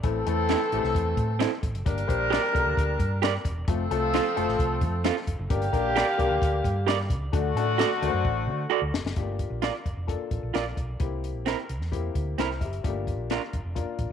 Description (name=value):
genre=uptempo 1960s-style soul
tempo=131 BPM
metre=4/4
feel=straight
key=G dorian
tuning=A4 = 439 Hz
part: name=mellow horn section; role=second line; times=0.0-8.9 s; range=D3 to Bb4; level=-28 LUFS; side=equal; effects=none
part: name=warm grand piano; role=accompaniment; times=0.0-14.1 s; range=A3 to E5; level=-32 LUFS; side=left 9 dB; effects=none
part: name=hollow-body short-scale fingered electric bass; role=bass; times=0.0-14.1 s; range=E1 to D3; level=-30 LUFS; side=right 1 dB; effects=none
part: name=compact cocktail drum kit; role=drums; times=0.0-14.1 s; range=hi-hat, kick drum, snare drum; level=-30 LUFS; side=left 2 dB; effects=none
part: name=electric guitar through a small old amp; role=stabs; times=0.5-13.4 s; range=C4 to D5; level=-29 LUFS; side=right 11 dB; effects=none
room=moderate spring reverb, RT60 1.6 s, small room reverb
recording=1960s-style stereo with parts hard left and right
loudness=-24 LUFS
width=side -8 dB against mid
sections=0.0-9.2 A section; 9.2-14.1 B section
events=drum fill 8.2-9.2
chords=0.0 Am; 1.9 Gm; 3.7 F; 5.5 Gm; 7.3 D; 9.2 Gm7; 11.0 C7; 12.8 Gm7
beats=| 0.04 0.49 0.94 1.40 | 1.85 2.31 2.77 3.22 | 3.68 4.13 4.59 5.04 | 5.50 5.96 6.41 6.87 | 7.33 7.79 8.24 8.70 | 9.16 9.62 10.08 10.54 | 11.00 11.46 11.92 12.38 | 12.84 13.30 13.76